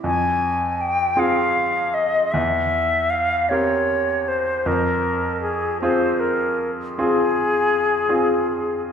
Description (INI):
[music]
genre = classical, romantic duo for flute and grand piano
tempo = 52 BPM (dotted quarters)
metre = 12/8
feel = rubato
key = F minor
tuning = A4 = 441 Hz
[part]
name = silver concert flute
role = melody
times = 0.0-8.8 s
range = Ab4 to Ab5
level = -20 LUFS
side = left 2 dB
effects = none
[part]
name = bright grand piano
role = accompaniment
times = 0.0-8.9 s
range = E2 to Bb4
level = -23 LUFS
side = equal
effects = none
[sound]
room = wet recital hall reverb, RT60 1.4 s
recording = recorded in a church or concert hall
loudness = -18 LUFS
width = side -7 dB against mid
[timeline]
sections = 0.0-8.9 A section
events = none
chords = 0.0 Fm; 2.3 C7/E; 4.7 Fm